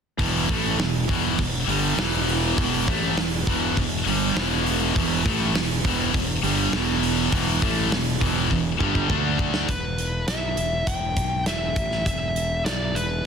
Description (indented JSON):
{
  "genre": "hard rock",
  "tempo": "101 BPM",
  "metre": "4/4",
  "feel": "straight",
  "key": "E minor",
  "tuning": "A4 = 439 Hz",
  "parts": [
    { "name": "biting overdriven guitar", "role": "riff", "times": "0.2-9.7 s", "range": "E2 to D4", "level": "-29 LUFS", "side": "right 1 dB", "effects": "none" },
    { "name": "crunchy overdriven guitar", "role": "riff", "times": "0.2-9.7 s", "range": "E2 to D4", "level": "-28 LUFS", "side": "right 12 dB", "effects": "spring reverb" },
    { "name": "scooped high-gain guitar", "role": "riff", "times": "0.2-9.7 s", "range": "E2 to D4", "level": "-26 LUFS", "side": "left 12 dB", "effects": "distortion" },
    { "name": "fuzz fingered electric bass", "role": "bass", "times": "0.2-13.2 s", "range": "E1 to D2", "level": "-28 LUFS", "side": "equal", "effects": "overdrive" },
    { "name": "big rock drum kit", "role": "drums", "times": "0.2-13.1 s", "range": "hi-hat, kick drum, snare drum", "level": "-26 LUFS", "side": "equal", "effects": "soft clipping on kick" },
    { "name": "high-gain lead guitar", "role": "melody", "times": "9.7-13.3 s", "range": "B4 to G5", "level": "-26 LUFS", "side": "left 1 dB", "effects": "distortion, slapback echo" }
  ],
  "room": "light reverb",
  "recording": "dense, heavily limited modern master",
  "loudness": "-20 LUFS",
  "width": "side -6 dB against mid",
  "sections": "0.2-9.7 A section; 9.7-13.3 B section",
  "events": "drum fill 8.5-9.7",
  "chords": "0.2 Em; 9.1 D5; 9.7 E5"
}